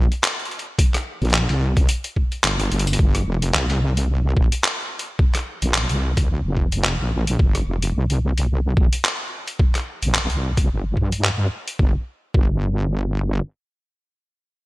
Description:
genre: glitch hop.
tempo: 109 BPM.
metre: 4/4.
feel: swing 56% on 16ths.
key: G minor.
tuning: A4 = 440 Hz.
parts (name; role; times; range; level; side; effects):
wobble bass; bass; 0.0-13.4 s; F1 to G2; -20 LUFS; equal; chorus.
boom bap sampler-style drum kit; drums; 0.1-11.8 s; handclaps, hi-hat, rim click; -23 LUFS; equal; gated reverb.
electronic kick drum; drums; 0.8-12.5 s; none; -18 LUFS; equal; none.
room: little or no reverb.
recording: bright 1980s-style digital production, lossy compression artefacts.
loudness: -18 LUFS.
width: side -20 dB against mid.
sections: 0.0-3.0 A section; 3.0-11.8 B section; 11.8-14.0 C section.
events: drop 0.0-3.0; drum fill 2.7; filter sweep on wobble bass 3.0-11.8.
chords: none.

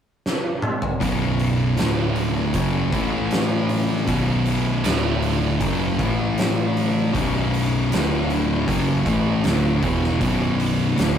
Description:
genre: stoner and doom metal.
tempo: 78 BPM.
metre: 4/4.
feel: straight.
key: B minor.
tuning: A4 = 440 Hz.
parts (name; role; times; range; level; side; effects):
oversized low-tuned drum kit; drums; 0.3-11.2 s; hi-hat, kick drum, snare drum, toms; -25 LUFS; right 1 dB; none.
thick fuzz guitar; riff; 1.0-11.2 s; B1 to A3; -22 LUFS; left 5 dB; distortion.
thick fuzz guitar; riff; 1.0-11.2 s; B1 to A3; -24 LUFS; right 6 dB; distortion.
fuzz picked electric bass; bass; 1.0-11.2 s; B0 to A1; -28 LUFS; right 1 dB; overdrive.
room: moderate stone room reverb, RT60 1.0 s.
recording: rough rehearsal-room recording, warm saturation.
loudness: -19 LUFS.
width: side -8 dB against mid.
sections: 0.0-1.0 A section; 1.0-11.2 B section.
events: drum fill 0.3-1.0.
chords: 0.0 N.C.; 1.0 B5; 1.8 D5; 2.5 F#5; 2.9 A5; 4.1 B5; 4.8 D5; 5.6 F#5; 6.0 A5; 7.1 B5; 7.9 D5; 8.7 Bm.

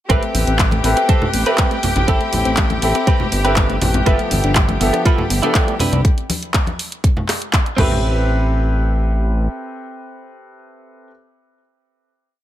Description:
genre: nu-disco, nu disco.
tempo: 121 BPM.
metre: 4/4.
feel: straight.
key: A minor.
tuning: A4 = 440 Hz.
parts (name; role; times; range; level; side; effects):
clear concert grand piano; accompaniment; 0.1-11.1 s; F3 to B5; -22 LUFS; left 1 dB; sidechain pumping, low-pass filter, ping-pong delay.
rich chamber violin section; sustained chords; 0.1-6.1 s; G4 to G5; -25 LUFS; equal; sidechain pumping.
soft round pluck; arpeggios; 0.1-8.2 s; G3 to D4; -26 LUFS; left 2 dB; chorus, sidechain pumping, ping-pong delay.
direct-recorded clean electric guitar; riff; 0.1-11.1 s; C4 to D5; -24 LUFS; right 3 dB; analog chorus, ping-pong delay.
fat analog bass; bass; 0.1-9.5 s; G1 to C2; -18 LUFS; equal; none.
electronic kick drum; drums; 0.1-7.9 s; none; -16 LUFS; equal; none.
pop drum kit; drums; 0.1-7.9 s; crash cymbal, handclaps, hi-hat, rim click; -22 LUFS; equal; none.
congas; percussion; 0.3-8.0 s; none; -24 LUFS; equal; none.
room: little or no reverb.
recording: none.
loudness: -14 LUFS.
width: side -12 dB against mid.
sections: 0.1-8.0 groove; 8.0-12.0 final hit.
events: none.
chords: 0.1 Am9; 4.1 G13; 5.8 Cmaj9; 7.8 Am9.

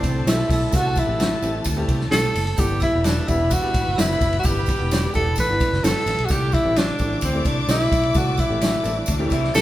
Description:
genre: uptempo 1960s-style soul.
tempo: 129 BPM.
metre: 4/4.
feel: straight.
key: unclear.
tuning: A4 = 440 Hz.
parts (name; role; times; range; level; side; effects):
breathy tenor saxophone; melody; 0.0-9.6 s; C4 to B4; -22 LUFS; equal; none.
glockenspiel with brass mallets; second line; 0.0-9.6 s; C6 to B6; -37 LUFS; equal; none.
warm studio string section; second line; 0.0-9.6 s; A4 to E6; -33 LUFS; left 3 dB; none.
warm upright piano; accompaniment; 0.0-9.6 s; C3 to A4; -29 LUFS; right 1 dB; none.
vintage muted fingered electric bass; bass; 0.0-9.6 s; E1 to D2; -24 LUFS; equal; none.
vintage drum kit; drums; 0.0-9.6 s; hi-hat, kick drum, ride cymbal, snare drum; -23 LUFS; equal; none.
tambourine; percussion; 0.0-9.6 s; none; -35 LUFS; right 3 dB; none.
electric guitar through a small old amp; riff; 9.1-9.6 s; F#3 to G4; -27 LUFS; left 2 dB; none.
room: moderate stone room reverb, RT60 1.3 s.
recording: band playing live in one room.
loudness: -18 LUFS.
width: side -14 dB against mid.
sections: 0.0-9.6 A section.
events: none.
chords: 0.0 C6; 2.6 G6; 6.3 C6.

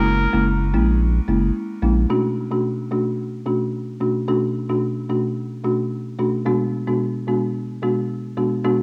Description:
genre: afrobeats.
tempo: 110 BPM.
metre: 4/4.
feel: straight.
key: B dorian.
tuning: A4 = 440 Hz.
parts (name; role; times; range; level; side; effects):
clear trumpet; melody; 0.0-0.5 s; A#4; -29 LUFS; equal; tape echo.
folk marimba with medium mallets; accompaniment; 0.0-8.8 s; B2 to F#4; -23 LUFS; equal; none.
saturated sub bass; bass; 0.0-2.1 s; F#1 to A#1; -21 LUFS; equal; none.
room: light reverb, small room ambience.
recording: home recording on cassette.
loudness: -22 LUFS.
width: mono.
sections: 0.0-2.1 A section; 2.1-8.8 B section.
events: none.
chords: 0.0 F#7; 2.1 Bm7; 6.5 Bm6.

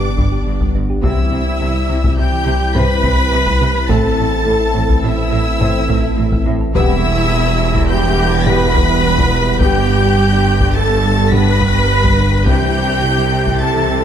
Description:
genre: cinematic, hybrid orchestral and electronic film score.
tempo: 105 BPM.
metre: 5/4.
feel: straight.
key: unclear.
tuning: A4 = 440 Hz.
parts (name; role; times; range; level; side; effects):
warm symphonic violin section; melody; 0.0-14.0 s; D6 to B6; -23 LUFS; left 3 dB; none.
rich symphonic violin section; second line; 0.0-14.0 s; D5 to B5; -22 LUFS; equal; none.
clear symphonic viola section; accompaniment; 0.0-14.0 s; D4 to B4; -21 LUFS; right 1 dB; none.
dark French horn section; sustained chords; 0.0-12.7 s; B3 to G4; -25 LUFS; left 4 dB; none.
hollow soft pad; sustained chords; 0.0-14.0 s; E3 to A4; -23 LUFS; right 1 dB; chorus.
saturated sub bass; bass; 0.0-14.0 s; E1 to C2; -20 LUFS; left 1 dB; none.
thumb-piano-like synth pluck; arpeggios; 0.2-14.0 s; C3 to A4; -25 LUFS; right 4 dB; none.
rich symphonic cello section; bass; 0.2-14.0 s; E2 to C3; -21 LUFS; right 2 dB; none.
rich symphonic double bass section; bass; 0.2-14.0 s; E1 to C2; -20 LUFS; right 3 dB; none.
taiko ensemble; drums; 0.2-14.0 s; none; -20 LUFS; left 1 dB; none.
room: moderate scoring stage reverb, RT60 2.0 s.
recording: none.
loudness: -12 LUFS.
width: side -9 dB against mid.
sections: 0.0-14.0 A section.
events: none.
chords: 0.0 G; 1.0 C; 3.9 Am; 6.8 Em; 9.6 G; 12.5 C.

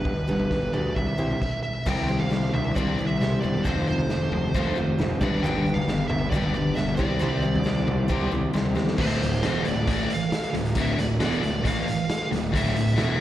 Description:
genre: quiet-loud alternative rock.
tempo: 135 BPM.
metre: 4/4.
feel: straight.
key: D dorian.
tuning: A4 = 441 Hz.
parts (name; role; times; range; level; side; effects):
smooth overdriven lead guitar; melody; 0.0-13.2 s; B4 to G5; -31 LUFS; right 2 dB; slapback echo.
picked steel-string acoustic guitar; arpeggios; 0.0-9.0 s; F2 to C5; -30 LUFS; right 2 dB; slapback echo.
fuzz picked electric bass; bass; 0.0-13.2 s; D1 to E2; -28 LUFS; equal; overdrive.
raw garage drum kit; drums; 0.1-13.2 s; crash cymbal, hi-hat, kick drum, snare drum, toms; -27 LUFS; equal; none.
biting overdriven guitar; riff; 1.9-13.2 s; D2 to C4; -29 LUFS; left 7 dB; none.
thick fuzz guitar; riff; 9.0-13.2 s; D2 to A3; -28 LUFS; right 5 dB; distortion.
room: studio reverb.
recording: live gig heard through the venue's PA, recital hall reverb.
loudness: -22 LUFS.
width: side -13 dB against mid.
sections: 0.0-1.9 A section; 1.9-9.0 B section; 9.0-13.2 C section.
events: stop 1.4-1.9; drum fill 8.8.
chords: 0.0 G; 1.0 C; 3.7 F; 5.2 G; 7.0 Cadd9; 9.0 Dm.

